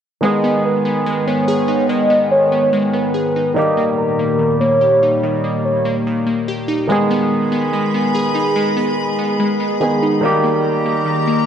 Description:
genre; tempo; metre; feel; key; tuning
hip hop; 144 BPM; 4/4; half-time; G# harmonic minor; A4 = 436 Hz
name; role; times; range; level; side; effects
warm velvety synth lead; second line; 0.2-6.0 s; A#4 to D#5; -17 LUFS; equal; chorus, analog delay
warm baby grand piano; accompaniment; 0.2-11.5 s; D#3 to G#4; -19 LUFS; right 1 dB; none
glassy FM pad; sustained chords; 0.7-11.5 s; D#2 to B5; -22 LUFS; right 1 dB; ensemble chorus, built-in reverb
glassy digital keys; arpeggios; 0.2-11.5 s; D#3 to G#4; -20 LUFS; left 1 dB; chorus, analog delay
room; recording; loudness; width
light reverb; dry, gritty hardware recording; -14 LUFS; side -8 dB against mid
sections
0.2-6.9 A section; 6.9-11.5 B section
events
none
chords
0.2 G#m; 3.6 D#; 6.9 G#m; 10.2 D#

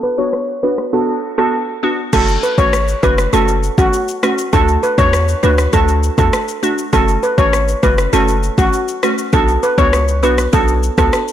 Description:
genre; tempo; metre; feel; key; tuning
dancehall; 100 BPM; 4/4; straight; F# minor; A4 = 440 Hz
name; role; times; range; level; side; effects
steel pan; melody; 0.0-11.1 s; F#4 to C#5; -16 LUFS; right 1 dB; tape echo
glassy wavetable pluck; accompaniment; 0.0-11.1 s; A3 to F#4; -19 LUFS; equal; chorus
afro-pop drum kit; drums; 0.3-11.3 s; crash cymbal, kick drum, rim click, shaker; -18 LUFS; left 1 dB; soft clipping on snare
warm 808-style bass; bass; 2.1-11.1 s; F#1 to E2; -16 LUFS; equal; none
room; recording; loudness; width
moderate plate reverb, RT60 1.7 s; blown-out, overdriven recording, overdrive, low-pass filter; -12 LUFS; side -11 dB against mid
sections
0.0-2.1 A section; 2.1-11.3 B section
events
filter sweep 0.0-2.1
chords
0.0 Bm; 2.1 F#m; 4.5 D; 6.9 F#m; 9.3 Bm

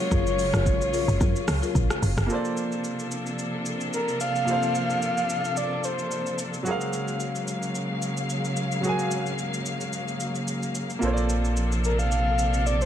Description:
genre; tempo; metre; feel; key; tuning
amapiano; 110 BPM; 4/4; swing 55% on 16ths; unclear; A4 = 441 Hz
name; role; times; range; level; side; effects
breathy flute-like synth lead; melody; 0.0-6.4, 11.8-12.9 s; Bb4 to F5; -28 LUFS; equal; chorus, ping-pong delay
muted studio string section; sustained chords; 0.0-12.9 s; C3 to F5; -29 LUFS; left 1 dB; none
buzzing marimba with medium mallets; stabs; 0.1-1.7 s; F4 to Bb4; -32 LUFS; left 11 dB; ping-pong delay
woody log drum bass; bass; 0.1-2.3 s; Gb1 to Gb2; -25 LUFS; equal; none
deep house drum kit; drums; 0.1-12.9 s; hi-hat, kick drum, rim click, shaker; -31 LUFS; equal; vintage 12-bit sampler grit
warm grand piano; accompaniment; 2.3-12.9 s; Gb3 to Ab5; -31 LUFS; right 2 dB; none
sub bass with octave; bass; 11.0-12.9 s; Bb1; -24 LUFS; equal; none
room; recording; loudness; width
light reverb, digital ambience; none; -24 LUFS; side -10 dB against mid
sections
0.0-2.3 A section; 2.3-12.9 B section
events
drop 0.0-2.3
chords
0.0 Gbmaj9; 2.3 Bbmaj9; 6.7 Gbmaj9; 11.0 Bbmaj9

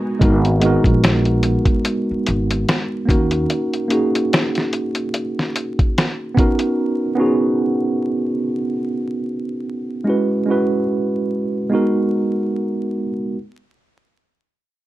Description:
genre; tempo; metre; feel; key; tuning
lo-fi hip hop; 73 BPM; 4/4; swing 57% on 16ths; G# minor; A4 = 441 Hz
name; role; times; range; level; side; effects
tine electric piano; accompaniment; 0.0-13.4 s; G#3 to B4; -18 LUFS; right 1 dB; medium stereo tremolo, cassette tape, low-pass filter
upright bass; bass; 0.2-3.4 s; G#1 to D#2; -19 LUFS; equal; none
lo-fi sampler-style drum kit; drums; 0.2-6.8 s; hi-hat, kick drum, snare drum; -18 LUFS; equal; none
room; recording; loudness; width
moderate studio reverb, RT60 0.5 s; vinyl crackle; -17 LUFS; side -15 dB against mid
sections
0.2-13.4 A section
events
break 0.0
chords
0.2 G#m9; 3.1 D#m7; 6.4 Bmaj7; 10.1 F#7sus4; 11.7 G#m9

